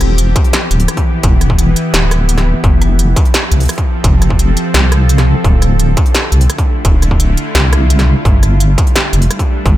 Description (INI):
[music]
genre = half-time drum and bass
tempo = 171 BPM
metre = 4/4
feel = half-time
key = E phrygian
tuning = A4 = 438 Hz
[part]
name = bowed-like drone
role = sustained chords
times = 0.0-9.8 s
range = D3 to B4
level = -18 LUFS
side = equal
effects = built-in reverb, sidechain pumping
[part]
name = deep soft wobble bass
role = bass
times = 0.0-9.8 s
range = D1 to C2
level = -11 LUFS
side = equal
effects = chorus
[part]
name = industrial drum kit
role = drums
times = 0.0-9.7 s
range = hi-hat, rim click, snare drum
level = -17 LUFS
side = equal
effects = studio reverb
[part]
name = electronic kick drum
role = drums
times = 0.4-9.7 s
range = none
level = -12 LUFS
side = equal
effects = distortion, studio reverb
[sound]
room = digital ambience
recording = none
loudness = -9 LUFS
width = side -14 dB against mid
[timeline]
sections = 0.0-9.8 A section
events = none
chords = 0.0 Em; 2.6 F; 5.4 Dm; 8.3 Gadd9